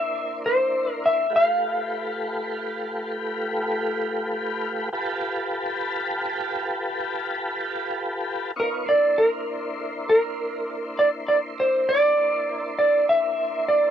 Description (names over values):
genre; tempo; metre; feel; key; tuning
blues; 66 BPM (dotted quarters); 12/8; straight; unclear; A4 = 440 Hz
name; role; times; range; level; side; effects
clean lap steel guitar; melody; 0.0-3.1, 8.6-13.9 s; Bb4 to F5; -20 LUFS; equal; cassette tape
tonewheel organ; sustained chords; 0.0-13.9 s; A3 to C#5; -27 LUFS; equal; slow rotary speaker, chorus vibrato
room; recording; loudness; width
wet booth ambience, RT60 0.2 s; home recording on cassette; -22 LUFS; side -9 dB against mid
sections
0.0-13.9 A section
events
none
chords
0.0 C9; 1.3 G9; 8.6 C9